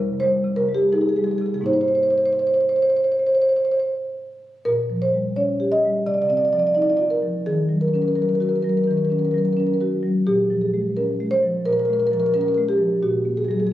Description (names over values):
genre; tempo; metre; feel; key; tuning
classical, contemporary piece for solo marimba; 79-88 BPM; 4/4; rubato; unclear; A4 = 445 Hz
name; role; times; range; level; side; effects
marimba with soft mallets; solo; 0.0-13.7 s; F2 to Eb5; -18 LUFS; equal; none
room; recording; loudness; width
moderate recital hall reverb, RT60 1.3 s; recorded on a phone in the room, club reverb, compression; -18 LUFS; side -13 dB against mid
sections
0.0-4.6 A section; 4.6-13.7 B section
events
none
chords
0.0 Fm9 (rootless); 1.6 Abadd9; 4.6 Bbm6; 6.1 Cmadd9; 7.5 Ebm7; 10.3 Bbm7; 13.0 Ab7sus2/Bb